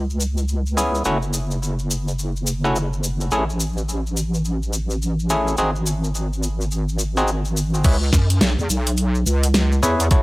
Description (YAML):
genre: glitch hop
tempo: 106 BPM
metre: 4/4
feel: swing 62% on 16ths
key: C# minor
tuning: A4 = 439 Hz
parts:
  - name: wobble bass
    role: bass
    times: 0.0-10.1 s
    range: F#1 to F#2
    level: -21 LUFS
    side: equal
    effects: chorus, overdrive
  - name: cabasa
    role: percussion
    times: 0.1-10.2 s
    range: none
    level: -28 LUFS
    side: left 1 dB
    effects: none
  - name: overdriven clav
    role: stabs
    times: 0.8-10.2 s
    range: A3 to C#5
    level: -22 LUFS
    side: equal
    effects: vintage 12-bit sampler grit, sidechain pumping, analog delay
  - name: dubstep drum kit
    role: drums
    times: 7.8-10.2 s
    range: crash cymbal, hi-hat, snare drum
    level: -21 LUFS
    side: equal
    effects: low-pass filter on hats, low-pass filter on cymbals, low-pass filter on snare
  - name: electronic kick drum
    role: drums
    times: 7.8-10.2 s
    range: none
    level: -16 LUFS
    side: equal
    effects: none
room: digital ambience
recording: dry, gritty hardware recording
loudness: -18 LUFS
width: side -21 dB against mid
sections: 0.0-7.8 A section; 7.8-10.2 B section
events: drop 7.8-10.2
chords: 0.0 C#m7; 1.1 N.C.; 3.3 Amaj7; 5.6 N.C.; 7.8 C#m7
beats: 0.49 | 1.05 1.62 2.19 2.75 | 3.32 3.88 4.45 5.02 | 5.58 6.15 6.71 7.28 | 7.85 8.41 8.98 9.54 | 10.11